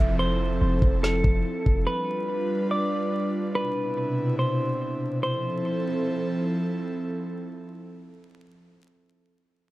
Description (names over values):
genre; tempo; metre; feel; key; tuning
hip hop, atmospheric cloud-rap; 143 BPM; 4/4; half-time; F lydian; A4 = 439 Hz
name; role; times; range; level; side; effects
clean electric guitar; melody; 0.0-6.4 s; A4 to E5; -29 LUFS; equal; low-pass filter, tape echo
airy breathy pad; sustained chords; 0.0-8.6 s; B2 to B4; -27 LUFS; right 1 dB; chorus, sidechain pumping
warm 808-style bass; bass; 0.0-1.9 s; F1; -25 LUFS; equal; none
downlifter; sound effects; 0.0-1.9 s; none; -44 LUFS; equal; none
smooth R&B drum kit; drums; 0.8-1.8 s; kick drum, snare drum; -23 LUFS; equal; none
room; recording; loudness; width
light reverb; dark, warm production, vinyl crackle; -23 LUFS; side -17 dB against mid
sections
0.0-5.2 A section; 5.2-8.6 B section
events
none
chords
0.0 Fmaj7; 1.9 G7; 3.5 Cmaj9; 5.2 Fmaj7